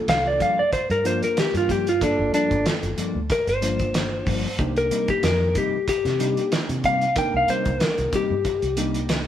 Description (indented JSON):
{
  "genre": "straight-eighth soul blues",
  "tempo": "93 BPM",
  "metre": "4/4",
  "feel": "swing 54% on 16ths",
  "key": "G minor",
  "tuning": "A4 = 440 Hz",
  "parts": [
    { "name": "reed electric piano", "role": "accompaniment", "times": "0.0-9.3 s", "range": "Bb3 to C5", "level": "-30 LUFS", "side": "right 1 dB", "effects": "spring reverb" },
    { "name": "clean lap steel guitar", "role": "melody", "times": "0.1-8.8 s", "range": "D4 to G5", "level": "-22 LUFS", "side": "left 1 dB", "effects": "none" },
    { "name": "vintage muted fingered electric bass", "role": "bass", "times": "0.1-9.3 s", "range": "G1 to C3", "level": "-28 LUFS", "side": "equal", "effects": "none" },
    { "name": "cloth-damped thuddy drum kit", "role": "drums", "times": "0.1-9.3 s", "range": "hi-hat, kick drum, snare drum", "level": "-27 LUFS", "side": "right 1 dB", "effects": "none" },
    { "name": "mellow electric guitar", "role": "stabs", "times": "0.4-9.0 s", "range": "G2 to Eb4", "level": "-30 LUFS", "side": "left 4 dB", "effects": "none" }
  ],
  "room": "moderate stone room reverb, RT60 1.1 s",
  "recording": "band playing live in one room, lossy compression artefacts",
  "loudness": "-20 LUFS",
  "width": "side -10 dB against mid",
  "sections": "0.0-9.3 A section",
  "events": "electric slide guitar solo 0.0-9.3",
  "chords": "0.0 Gm7; 4.6 Cm7"
}